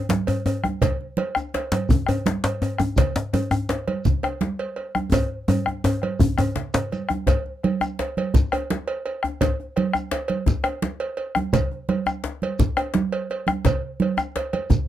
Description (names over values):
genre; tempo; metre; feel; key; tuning
west african traditional, West African drum ensemble; 112 BPM (dotted quarters); 12/8; straight; none; none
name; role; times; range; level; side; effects
congas; percussion; 0.1-14.9 s; none; -26 LUFS; right 6 dB; none
djembe; percussion; 0.1-14.9 s; none; -26 LUFS; left 4 dB; none
djembe; percussion; 0.1-6.9 s; none; -23 LUFS; left 2 dB; none
cowbell; percussion; 0.3-14.7 s; none; -28 LUFS; right 4 dB; none
bombo; percussion; 0.6-14.9 s; none; -23 LUFS; equal; none
shekere; percussion; 0.8-14.9 s; none; -28 LUFS; left 2 dB; none
room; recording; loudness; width
little or no reverb; close, detailed microphones; -21 LUFS; side -12 dB against mid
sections
0.0-7.3 A section; 7.3-14.9 B section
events
drum fill 5.1-7.3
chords
none